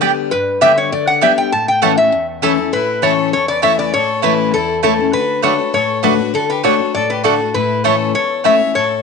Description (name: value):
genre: bluegrass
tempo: 199 BPM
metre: 4/4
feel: straight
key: A mixolydian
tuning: A4 = 440 Hz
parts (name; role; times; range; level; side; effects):
- picked steel-string acoustic guitar; accompaniment; 0.0-9.0 s; E2 to G4; -19 LUFS; left 11 dB; none
- mandolin; stabs; 0.0-8.5 s; A3 to A5; -18 LUFS; right 14 dB; none
- lap resonator guitar; melody; 0.3-9.0 s; A4 to A5; -15 LUFS; left 1 dB; none
- clear fiddle; second line; 2.4-9.0 s; E4 to C#5; -25 LUFS; left 8 dB; none
room: wet spring reverb, RT60 1.6 s, small room ambience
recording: 1960s-style stereo with parts hard left and right, nothing above 10.4 kHz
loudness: -12 LUFS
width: side -5 dB against mid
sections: 0.0-2.7 A section; 2.7-9.0 B section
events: resonator guitar played with a steel bar solo 0.0-2.7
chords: 0.0 G; 1.5 A; 5.1 D; 7.5 A